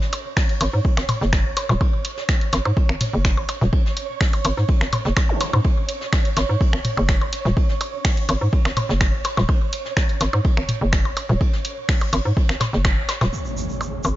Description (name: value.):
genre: minimal techno.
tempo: 125 BPM.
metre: 4/4.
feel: straight.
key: unclear.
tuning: A4 = 440 Hz.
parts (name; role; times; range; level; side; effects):
soft brush drum kit; drums; 0.0-13.3 s; hi-hat, ride cymbal, snare drum; -34 LUFS; right 1 dB; high-pass filter on cymbals, high-pass filter on hats, high-pass filter on snare, high-pass filter on room.
flickering grainy texture; texture; 0.0-14.2 s; G#4 to C#5; -31 LUFS; right 4 dB; built-in reverb, sidechain pumping.
punchy analog drum machine; drums; 0.1-13.2 s; finger snaps, hi-hat; -26 LUFS; equal; overdrive, low-pass filter on hats, low-pass filter on snare, low-pass filter on room.
electronic percussion blips and toms; percussion; 0.1-14.1 s; none; -25 LUFS; left 1 dB; overdrive, tape echo.
electronic kick drum; drums; 0.4-12.9 s; none; -20 LUFS; equal; overdrive.
hollow knocking FM bass; bass; 0.6-14.1 s; D#1 to G#2; -21 LUFS; equal; sidechain pumping.
zap and impact; sound effects; 5.3-5.4, 13.3-14.2 s; none; -28 LUFS; equal; none.
egg shaker; percussion; 13.3-14.1 s; none; -36 LUFS; right 4 dB; none.
room: little or no reverb.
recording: nothing above 7.5 kHz.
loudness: -18 LUFS.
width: side -15 dB against mid.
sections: 0.0-13.3 A section.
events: band accent 12.8; impact 13.3-14.2.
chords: 0.0 G#5.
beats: 0.37 0.85 1.33 | 1.81 2.29 2.77 3.25 | 3.73 4.21 4.69 5.17 | 5.65 6.13 6.61 7.09 | 7.57 8.05 8.53 9.01 | 9.49 9.97 10.45 10.93 | 11.41 11.89 12.37 12.85 | 13.33 13.81.